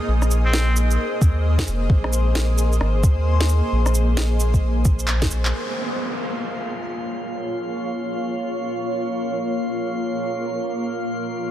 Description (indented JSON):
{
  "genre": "future garage",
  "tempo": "132 BPM",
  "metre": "4/4",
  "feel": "swing 62% on 16ths",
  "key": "Bb minor",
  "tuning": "A4 = 440 Hz",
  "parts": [
    { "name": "granular cloud pad", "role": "sustained chords", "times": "0.0-11.5 s", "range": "Bb3 to Eb5", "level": "-25 LUFS", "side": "equal", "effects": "built-in reverb, sidechain pumping" },
    { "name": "warm sub bass", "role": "bass", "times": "0.1-5.5 s", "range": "F1 to Eb2", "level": "-19 LUFS", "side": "equal", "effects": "sidechain pumping" },
    { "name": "electronic rim click, shaker, snare drum and handclaps", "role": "drums", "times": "0.2-5.5 s", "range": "none", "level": "-27 LUFS", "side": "equal", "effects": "none" },
    { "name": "trumpet with straight mute", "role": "melody", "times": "0.5-0.8 s", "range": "C4", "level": "-29 LUFS", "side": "equal", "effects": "analog delay" },
    { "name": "electronic kick drum", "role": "drums", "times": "1.2-5.3 s", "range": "none", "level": "-18 LUFS", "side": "equal", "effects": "none" },
    { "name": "downlifter", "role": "sound effects", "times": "5.5-9.2 s", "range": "none", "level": "-31 LUFS", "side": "right 1 dB", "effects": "none" },
    { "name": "drifting glass-harmonics texture", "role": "texture", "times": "6.1-11.5 s", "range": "F4 to F5", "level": "-32 LUFS", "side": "right 1 dB", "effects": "chorus, built-in reverb" }
  ],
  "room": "little or no reverb",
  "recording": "dense, heavily limited modern master",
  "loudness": "-19 LUFS",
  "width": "side -12 dB against mid",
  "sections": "0.0-5.5 A section; 5.5-11.5 B section",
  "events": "drum fill 5.1-5.5; band accent 5.4; filter sweep on ambient pad 5.5-11.5",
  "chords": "0.0 Abadd9; 5.5 Bbm7"
}